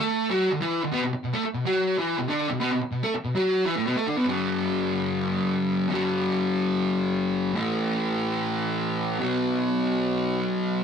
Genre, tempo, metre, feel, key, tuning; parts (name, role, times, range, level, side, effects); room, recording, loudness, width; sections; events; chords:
rock; 146 BPM; 4/4; straight; F# minor; A4 = 445 Hz
fuzz guitar; solo; 0.0-10.8 s; F#2 to A4; -23 LUFS; equal; distortion
moderate studio ambience, RT60 0.5 s; rough rehearsal-room recording; -23 LUFS; side -7 dB against mid
0.0-4.3 A section; 4.3-10.8 B section
0.0 D5; 0.9 B5; 4.3 F#5; 7.6 A5; 9.2 B5